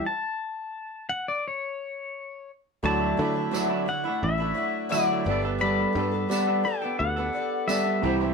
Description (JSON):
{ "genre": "folk rock and heartland rock", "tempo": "86 BPM", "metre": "4/4", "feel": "straight", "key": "D major", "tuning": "A4 = 440 Hz", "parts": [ { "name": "pedal steel guitar", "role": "melody", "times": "0.0-8.2 s", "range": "C#5 to B5", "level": "-29 LUFS", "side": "left 3 dB", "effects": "none" }, { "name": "picked twelve-string acoustic guitar", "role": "accompaniment", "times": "0.0-8.3 s", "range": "D3 to C5", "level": "-29 LUFS", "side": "left 5 dB", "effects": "none" }, { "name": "mellow tonewheel organ", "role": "sustained chords", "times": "0.0-8.3 s", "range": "E4 to D5", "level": "-38 LUFS", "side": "left 1 dB", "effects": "none" }, { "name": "semi-hollow electric guitar", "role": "riff", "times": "0.0-8.3 s", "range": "C3 to A4", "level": "-28 LUFS", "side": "right 6 dB", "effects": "none" }, { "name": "picked electric bass", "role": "bass", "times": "2.8-8.3 s", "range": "G1 to D3", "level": "-29 LUFS", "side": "left 1 dB", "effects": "none" }, { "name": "tambourine", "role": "percussion", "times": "3.5-7.9 s", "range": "none", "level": "-36 LUFS", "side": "right 4 dB", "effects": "none" } ], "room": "moderate studio reverb, RT60 0.6 s", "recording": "band playing live in one room", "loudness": "-24 LUFS", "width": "side -5 dB against mid", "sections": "0.0-2.8 A section; 2.8-8.3 B section", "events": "stop 0.1-2.8", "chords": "0.1 N.C.; 2.8 Dadd9; 5.3 Gadd9" }